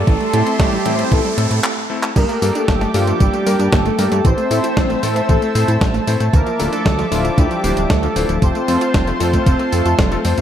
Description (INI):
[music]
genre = italo disco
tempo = 115 BPM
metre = 4/4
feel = straight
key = G dorian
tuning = A4 = 439 Hz
[part]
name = analog synth brass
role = melody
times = 0.0-10.2 s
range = F3 to C5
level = -21 LUFS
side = equal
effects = chorus, tape echo
[part]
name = warm analog pad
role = sustained chords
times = 0.0-10.4 s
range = F3 to E6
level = -24 LUFS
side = right 1 dB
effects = chorus
[part]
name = analog pluck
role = arpeggios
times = 0.0-10.4 s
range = E3 to F4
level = -26 LUFS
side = right 3 dB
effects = chorus, tape echo
[part]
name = chorused synth bass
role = bass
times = 0.0-10.4 s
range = D1 to A2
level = -20 LUFS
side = equal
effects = none
[part]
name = riser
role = sound effects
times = 0.0-1.6 s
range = none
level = -28 LUFS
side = right 2 dB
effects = none
[part]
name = clean 12-bit digital drum machine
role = drums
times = 0.1-10.4 s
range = crash cymbal, handclaps, hi-hat, snare drum, tambourine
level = -23 LUFS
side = equal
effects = high-pass filter on hats, high-pass filter on snare, high-pass filter on perc, high-pass filter on cymbals, gated reverb
[part]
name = electronic kick drum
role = drums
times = 0.1-10.1 s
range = none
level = -16 LUFS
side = equal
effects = none
[part]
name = bright electric grand piano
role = stabs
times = 0.3-10.4 s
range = A3 to C5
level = -24 LUFS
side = left 5 dB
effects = none
[sound]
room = light reverb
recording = none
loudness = -14 LUFS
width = side -10 dB against mid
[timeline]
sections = 0.0-2.2 A section; 2.2-10.4 B section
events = riser 0.0-1.6; filter sweep on analog synth pad 0.0-2.2; break 1.6-2.2; drum fill 1.6-2.2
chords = 0.1 Am7; 2.2 Gmadd9; 4.2 Am; 6.3 Dmadd9; 8.4 F